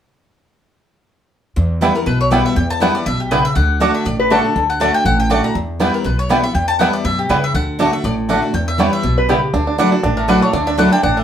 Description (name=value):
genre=bluegrass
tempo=241 BPM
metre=4/4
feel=swing 55% on 8ths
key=E dorian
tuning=A4 = 445 Hz
part: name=picked steel-string acoustic guitar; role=accompaniment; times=1.6-11.2 s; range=E2 to F#4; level=-19 LUFS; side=left 1 dB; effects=none
part: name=upright bass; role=bass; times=1.6-11.2 s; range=A1 to F#2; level=-20 LUFS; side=equal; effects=none
part: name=bluegrass banjo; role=melody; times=1.8-11.2 s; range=G3 to E4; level=-18 LUFS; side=right 4 dB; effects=none
part: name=mandolin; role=stabs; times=1.8-10.9 s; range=A3 to G5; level=-20 LUFS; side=right 1 dB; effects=none
part: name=mandolin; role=melody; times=2.0-11.2 s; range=G4 to A#5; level=-20 LUFS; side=left 2 dB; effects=none
part: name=lap resonator guitar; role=second line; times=4.2-4.6, 9.2-9.5 s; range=G4 to B4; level=-17 LUFS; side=left 3 dB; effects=none
room=wet studio ambience, RT60 0.5 s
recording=band playing live in one room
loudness=-13 LUFS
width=side -9 dB against mid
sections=1.6-9.5 A section; 9.5-11.2 B section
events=none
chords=1.6 Em; 3.6 D; 5.6 Em; 7.5 D; 8.5 Em; 9.5 Dadd9